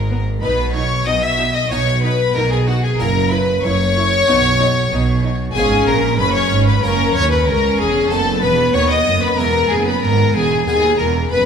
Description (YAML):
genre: classical, baroque-style concerto movement with solo episodes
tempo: 94 BPM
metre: 4/4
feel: straight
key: unclear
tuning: A4 = 440 Hz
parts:
  - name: rich chamber violin section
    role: melody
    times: 0.0-11.5 s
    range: F#5 to E6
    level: -23 LUFS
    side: left 4 dB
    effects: none
  - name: rich violin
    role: melody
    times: 0.0-11.5 s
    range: F#4 to E5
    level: -19 LUFS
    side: left 2 dB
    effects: none
  - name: rich chamber violin section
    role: second line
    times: 0.0-11.5 s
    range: F#4 to E5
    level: -21 LUFS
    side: left 4 dB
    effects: none
  - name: harpsichord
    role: accompaniment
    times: 0.0-11.5 s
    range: C#2 to G#4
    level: -27 LUFS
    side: right 1 dB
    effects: none
  - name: rich chamber cello section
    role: bass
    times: 0.0-11.5 s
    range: C#2 to B2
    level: -21 LUFS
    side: right 2 dB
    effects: none
  - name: rich chamber double bass section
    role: bass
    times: 0.0-11.5 s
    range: E1 to D#2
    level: -21 LUFS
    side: right 3 dB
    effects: none
  - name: rich chamber viola section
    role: accompaniment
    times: 0.1-11.5 s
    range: B3 to E4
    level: -25 LUFS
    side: right 3 dB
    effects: none
room: wet scoring stage reverb, RT60 1.7 s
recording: minimal, uncompressed stereo recording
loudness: -13 LUFS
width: side -7 dB against mid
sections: 0.0-11.5 A section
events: none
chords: 0.4 B; 3.0 F#7; 4.3 B; 5.5 C#7/G#; 6.8 F#; 8.1 B; 9.4 E; 10.7 B